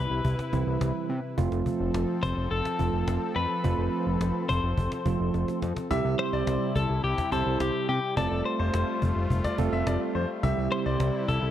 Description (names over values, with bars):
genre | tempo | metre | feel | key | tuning
synth-pop | 106 BPM | 4/4 | straight | C major | A4 = 441 Hz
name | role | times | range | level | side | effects
twelve-string electric guitar | melody | 0.0-11.5 s | G4 to C5 | -31 LUFS | left 3 dB | analog delay
warm analog pad | sustained chords | 0.0-11.5 s | C3 to B4 | -33 LUFS | left 2 dB | chorus
fat analog bass | bass | 0.0-11.5 s | F1 to C3 | -29 LUFS | equal | none
cajon | drums | 0.2-11.4 s | none | -33 LUFS | left 1 dB | none
bell-like tine electric piano | accompaniment | 0.5-11.2 s | E3 to A4 | -31 LUFS | right 6 dB | none
clear grand piano | second line | 5.9-11.3 s | C5 to E5 | -34 LUFS | left 3 dB | analog delay
room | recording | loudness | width
moderate lush hall reverb, RT60 1.8 s, studio reverb | dark, warm production | -25 LUFS | side -11 dB against mid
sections
0.0-5.9 A section; 5.9-11.5 B section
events
drum fill 5.3-5.9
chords
0.0 Cmaj7; 1.4 F; 5.9 C; 8.2 Fadd9; 10.4 C